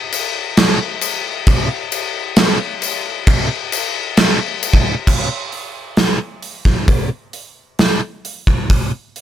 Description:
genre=rock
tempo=133 BPM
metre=4/4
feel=straight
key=none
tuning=none
part: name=gated 80s drum kit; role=drums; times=0.1-9.2 s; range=crash cymbal, hi-hat, kick drum, snare drum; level=-14 LUFS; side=equal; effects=none
part: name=tambourine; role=percussion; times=0.1-4.7 s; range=none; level=-24 LUFS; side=left 7 dB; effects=none
room=little or no reverb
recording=none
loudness=-14 LUFS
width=side -11 dB against mid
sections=0.0-5.1 A section; 5.1-9.2 B section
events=none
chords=none

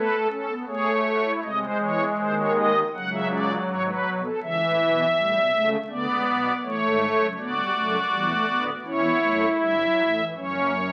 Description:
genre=classical, baroque-style 4-part fugue for pipe organ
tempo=80 BPM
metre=4/4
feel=straight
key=unclear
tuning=A4 = 440 Hz
part: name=pipe organ, strings celeste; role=solo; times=0.0-10.9 s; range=D1 to F#5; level=-24 LUFS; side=equal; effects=none
room=wet stone room reverb, RT60 1.0 s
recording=very old 78 rpm record, vinyl crackle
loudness=-24 LUFS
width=mono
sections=0.0-1.4 A section; 1.4-10.9 B section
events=none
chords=0.0 F#m/A (rootless); 1.4 G#/B#; 2.9 C#5; 4.4 A7; 5.9 D; 7.4 Bm/D; 8.8 C#dim/E; 10.3 F#

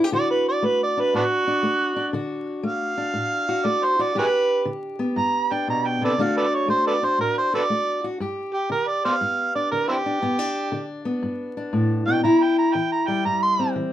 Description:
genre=acoustic country blues, solo or duo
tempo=119 BPM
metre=4/4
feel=swing 67% on 8ths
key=G major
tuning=A4 = 440 Hz
part: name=fingerpicked steel-string acoustic guitar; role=accompaniment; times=0.0-13.9 s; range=G2 to G4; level=-24 LUFS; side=left 2 dB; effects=none
part: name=overdriven harmonica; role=melody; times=0.2-13.7 s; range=B3 to C6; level=-21 LUFS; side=right 2 dB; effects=none
room=moderate studio ambience, RT60 0.4 s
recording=minimal, uncompressed stereo recording, vinyl crackle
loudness=-20 LUFS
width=side -12 dB against mid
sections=0.0-8.2 A section; 8.2-13.9 B section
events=harmonica solo 8.2-13.9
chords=0.1 D; 4.2 G; 6.2 D; 8.2 G; 12.2 C

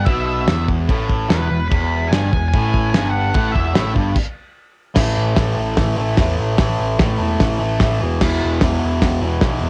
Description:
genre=garage rock duo or trio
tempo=148 BPM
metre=4/4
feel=straight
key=unclear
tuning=A4 = 440 Hz
part: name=octave-fuzz lead guitar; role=melody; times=0.0-3.9 s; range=B4 to B5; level=-26 LUFS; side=equal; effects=distortion
part: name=fuzz guitar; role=riff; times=0.0-9.7 s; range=E2 to A3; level=-23 LUFS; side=equal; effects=distortion, cassette tape
part: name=overdriven picked electric bass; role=bass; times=0.0-9.7 s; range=E1 to E2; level=-24 LUFS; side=equal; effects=none
part: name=cloth-damped thuddy drum kit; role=drums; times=0.1-9.5 s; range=crash cymbal, hi-hat, kick drum, snare drum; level=-21 LUFS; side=equal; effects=cassette tape
room=little or no reverb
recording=home recording on cassette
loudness=-18 LUFS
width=mono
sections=0.0-5.0 A section; 5.0-9.7 B section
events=stop 4.2-5.0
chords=0.0 E5; 5.0 A5; 8.0 E5

